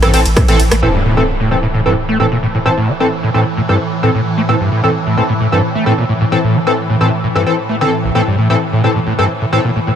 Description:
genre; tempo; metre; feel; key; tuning
driving peak-time techno; 131 BPM; 4/4; straight; A minor; A4 = 440 Hz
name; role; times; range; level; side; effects
screaming distorted acid line; riff; 0.0-9.9 s; A1 to A3; -16 LUFS; equal; distortion, analog chorus, cassette tape, sidechain pumping
sync-sweep polysynth; stabs; 0.0-9.6 s; E3 to A4; -16 LUFS; left 1 dB; analog chorus, sidechain pumping, dub echo
swarming drone; drone; 0.0-10.0 s; A2 to E3; -19 LUFS; right 1 dB; built-in reverb, sidechain pumping
techno drum kit; drums; 0.0-0.8 s; hi-hat, ride cymbal, rim click; -20 LUFS; right 1 dB; overdrive, sidechain pumping on hats, low-pass filter on hats, sidechain pumping on cymbals, low-pass filter on cymbals, low-pass filter on snare
saturated sub bass; bass; 0.1-0.8 s; A1; -15 LUFS; equal; overdrive, sidechain pumping, low-pass filter
electronic kick drum; drums; 0.4-0.5 s; none; -12 LUFS; equal; overdrive
impact; sound effects; 0.8-2.7 s; none; -21 LUFS; equal; none
room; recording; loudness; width
light reverb; none; -11 LUFS; side -8 dB against mid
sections
0.8-10.0 A section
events
impact 0.8-2.7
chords
0.0 Am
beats
0.37 | 0.82 1.28 1.74 2.20 | 2.66 3.11 3.57 4.03 | 4.49 4.95 5.40 5.86 | 6.32 6.78 7.24 7.69 | 8.15 8.61 9.07 9.53

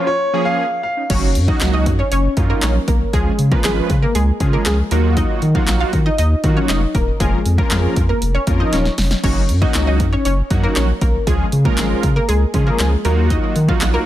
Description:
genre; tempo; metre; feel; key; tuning
dance-pop; 118 BPM; 4/4; straight; unclear; A4 = 440 Hz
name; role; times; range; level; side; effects
clear concert grand piano; melody; 0.0-1.1 s; Db5 to F5; -19 LUFS; left 1 dB; ping-pong delay
big bright polysynth; accompaniment; 0.0-14.1 s; F3 to Cb5; -23 LUFS; right 2 dB; chorus, sidechain pumping
analog pluck; melody; 1.1-14.0 s; Ab3 to F5; -22 LUFS; left 1 dB; chorus, sidechain pumping, ping-pong delay
saturated sub bass; bass; 1.1-14.0 s; Eb1 to Eb3; -17 LUFS; equal; sidechain pumping
punchy analog drum machine; drums; 1.1-13.9 s; crash cymbal, handclaps, hi-hat, kick drum, snare drum; -19 LUFS; equal; overdrive
room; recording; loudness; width
digital ambience; none; -14 LUFS; side -13 dB against mid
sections
0.0-1.1 A section; 1.1-14.1 B section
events
break 0.0-1.1; build-up 0.0-1.1; filter sweep 0.0-1.1; drop 1.1-14.1; drum fill 8.7-9.2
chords
0.0 Bbm; 1.1 Gb6; 3.1 Db; 4.9 Ebmadd9; 7.2 Bbm/F; 9.2 Gb6; 11.3 Db; 13.0 Ebmadd9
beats
0.08 0.59 | 1.10 1.61 2.12 2.63 | 3.13 3.64 4.15 4.66 | 5.17 5.68 6.18 6.69 | 7.20 7.71 8.22 8.73 | 9.24 9.74 10.25 10.76 | 11.27 11.78 12.29 12.79 | 13.30 13.81

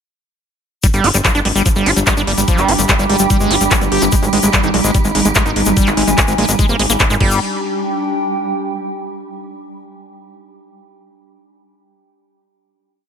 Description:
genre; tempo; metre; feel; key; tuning
psychedelic trance; 146 BPM; 4/4; straight; unclear; A4 = 439 Hz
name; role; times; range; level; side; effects
swarming drone; sustained chords; 1.6-7.2 s; G3; -22 LUFS; right 2 dB; built-in reverb, sidechain pumping
screaming distorted acid line; riff; 0.8-7.4 s; F3 to G4; -18 LUFS; right 1 dB; distortion, chorus, auto-pan, sidechain pumping, dub echo
drum and bass drum kit; drums; 0.8-7.3 s; crash cymbal, handclaps, hi-hat; -18 LUFS; left 1 dB; none
electronic kick drum; drums; 0.8-7.3 s; none; -16 LUFS; equal; none
tube shaker; percussion; 0.8-7.4 s; none; -22 LUFS; left 5 dB; none
warbly tape-like pad; texture; 1.2-9.0 s; D4 to Ab5; -22 LUFS; equal; chorus, built-in reverb, sidechain pumping
fat analog bass; bass; 0.9-7.4 s; G1 to Bb1; -19 LUFS; equal; none
room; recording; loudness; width
little or no reverb; none; -12 LUFS; side -7 dB against mid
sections
0.8-7.4 drop; 7.4-9.1 final note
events
drop 0.8-7.4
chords
0.8 G5; 4.1 Ab5; 7.2 G5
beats
| 0.83 1.25 1.66 2.07 | 2.48 2.89 3.30 3.71 | 4.12 4.53 4.95 5.36 | 5.77 6.18 6.59 7.00 | 7.41 7.82 8.23 8.64

